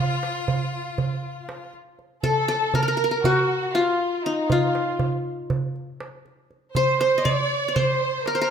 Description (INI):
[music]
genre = Turkish makam ensemble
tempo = 238 BPM (eighths)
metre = 9/8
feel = straight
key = F makam hicaz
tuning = A4 = 441 Hz
[part]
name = qanun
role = melody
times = 0.0-8.5 s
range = Eb4 to Eb5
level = -23 LUFS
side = left 2 dB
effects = none
[part]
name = bright violin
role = second line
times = 0.0-1.7 s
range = F4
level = -33 LUFS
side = left 5 dB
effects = none
[part]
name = dark symphonic violin section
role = second line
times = 0.0-8.5 s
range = Eb4 to D5-40c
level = -26 LUFS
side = right 1 dB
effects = none
[part]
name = darbuka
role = percussion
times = 0.2-8.4 s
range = none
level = -26 LUFS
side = right 3 dB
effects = none
[sound]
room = moderate recital hall reverb, RT60 1.4 s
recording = minimal, uncompressed stereo recording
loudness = -21 LUFS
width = side -7 dB against mid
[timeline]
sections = 0.0-2.2 A section; 2.2-8.5 A section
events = none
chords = none